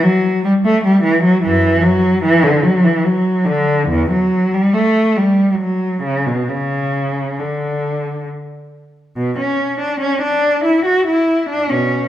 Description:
classical, baroque-style suite movement for unaccompanied cello; 65-75 BPM; 3/4; rubato; A4 = 438 Hz
warm cello; solo; 0.0-12.1 s; E2 to F#4; -13 LUFS; equal
moderate recital hall reverb, RT60 1.4 s; -13 LUFS; side -12 dB against mid
0.0-9.2 A section; 9.2-12.1 B section
0.64 | 1.44 2.24 3.05 | 3.89 4.74 5.59 | 6.48 7.39 8.28 | 9.17 10.01 10.86 | 11.69

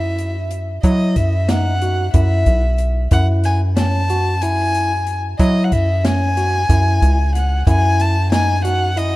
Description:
progressive instrumental, band music in an uneven meter; 184 BPM (eighths); 7/8; straight; F# dorian; A4 = 440 Hz
dark violin; melody; 0.0-9.2 s; D#5 to A5; -21 LUFS; left 1 dB; digital delay
tine electric piano; arpeggios; 0.0-9.2 s; C#4 to F#4; -25 LUFS; moving between left 3 dB and right 3 dB; auto-pan, digital delay
rubbery square bass; bass; 0.0-9.2 s; B1 to F#3; -16 LUFS; equal
open jazz drum kit; drums; 0.2-9.1 s; hi-hat, kick drum, snare drum; -19 LUFS; equal
light reverb, small room ambience; rough home demo mix; -14 LUFS; side -18 dB against mid
0.0-9.2 A section
0.0 E5/F#; 3.1 F#7(no3); 7.7 E5/F#
0.18 0.51 | 0.83 1.16 1.48 1.81 2.13 2.46 2.79 | 3.11 3.44 3.76 4.09 4.41 4.74 5.07 | 5.39 5.71 6.04 6.37 6.69 7.02 7.34 | 7.67 7.99 8.32 8.64 8.96

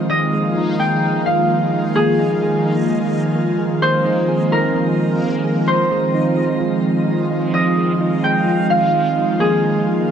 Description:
hip hop; 129 BPM; 4/4; half-time; F minor; A4 = 440 Hz
Celtic harp; melody; 0.0-10.1 s; Ab4 to G5; -19 LUFS; left 1 dB; low-pass filter, digital delay
airy breathy pad; sustained chords; 0.0-10.1 s; Eb3 to F4; -18 LUFS; right 1 dB; chorus
soft electric-piano-like synth keys; arpeggios; 0.0-10.1 s; F3 to Ab4; -25 LUFS; right 3 dB; chorus, low-pass filter, digital delay
backwards swelling texture; texture; 0.0-10.1 s; Ab3 to F5; -29 LUFS; equal; built-in reverb
light reverb, digital ambience; dark, warm production; -15 LUFS; side -8 dB against mid
0.0-10.1 A section
0.0 Fm7; 9.4 Bb7sus4
| 0.10 0.56 1.03 1.50 | 1.96 2.42 2.89 3.35 | 3.82 4.29 4.75 5.22 | 5.68 6.15 6.61 7.08 | 7.54 8.01 8.47 8.94 | 9.40 9.87

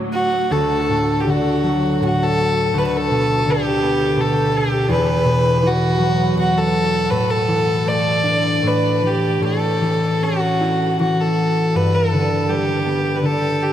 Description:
celtic folk, Celtic slow air; 75-85 BPM; 3/4; rubato; D major; A4 = 440 Hz
concert harp; accompaniment; 0.0-13.7 s; D2 to E4; -19 LUFS; equal
warm studio string section; sustained chords; 0.0-0.5 s; D2 to F#3; -31 LUFS; right 2 dB
warm fiddle; melody; 0.1-13.7 s; F#4 to D5; -18 LUFS; equal; diffuse ambient delay
wet huge ambient reverb, RT60 6.8 s; dreamy mix soaked in reverb; -16 LUFS; side -11 dB against mid
0.5-13.7 A section
0.0 D; 2.7 G/D; 4.9 Esus2; 7.1 Asus4; 9.4 A; 11.7 Gadd9
| 0.50 1.27 2.02 | 2.75 3.46 4.17 | 4.89 5.62 6.36 | 7.09 7.85 8.63 | 9.42 10.21 10.98 | 11.73 12.49 13.22

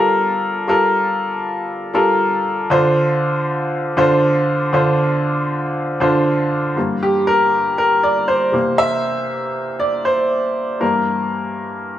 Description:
disco; 118 BPM; 4/4; straight; G dorian; A4 = 440 Hz
clear baby grand piano; solo; 0.0-12.0 s; G2 to E5; -15 LUFS; equal
moderate large studio reverb, RT60 1.1 s; band playing live in one room; -15 LUFS; side -12 dB against mid
0.0-6.8 A section; 6.8-12.0 B section
grand piano solo 6.8-12.0
0.0 Gm9; 2.7 Dm7; 6.8 Gm6; 8.5 C7; 10.8 Gm6
0.17 | 0.68 1.19 1.69 2.20 | 2.71 3.21 3.72 4.23 | 4.73 5.24 5.75 6.25 | 6.76 7.26 7.77 8.28 | 8.79 9.29 9.80 10.30 | 10.81 11.32 11.82

